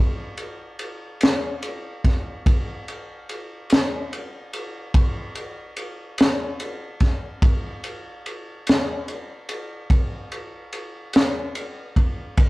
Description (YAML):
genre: blues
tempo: 48 BPM (dotted quarters)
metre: 12/8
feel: straight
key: none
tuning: none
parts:
  - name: crunchy breakbeat drum kit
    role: drums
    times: 0.4-12.5 s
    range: kick drum, ride cymbal, snare drum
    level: -21 LUFS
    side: equal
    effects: none
room: light reverb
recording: band playing live in one room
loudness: -20 LUFS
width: side -21 dB against mid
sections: 0.0-12.5 A section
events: none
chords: none